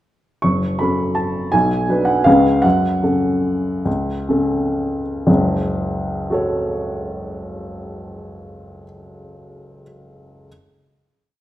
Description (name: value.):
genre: classical, piano waltz.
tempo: 113-172 BPM.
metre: 3/4.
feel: rubato.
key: F# minor.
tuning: A4 = 440 Hz.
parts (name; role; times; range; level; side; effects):
warm upright piano; solo; 0.4-10.5 s; F#1 to C#6; -16 LUFS; equal; none.
room: moderate recital hall reverb, RT60 1.4 s.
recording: none.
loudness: -16 LUFS.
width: side -13 dB against mid.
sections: 0.4-5.3 A section; 5.3-8.4 final chord.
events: slowing down 2.1-5.3.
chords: 0.4 F#m; 1.5 Bm; 2.3 C#7; 2.6 F#m.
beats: | 0.43 0.80 1.17 | 1.53 1.89 2.26 | 2.64 3.03 3.44 | 3.86 4.29 4.77 | 5.27 5.78 6.30 | 6.81 7.32 7.85.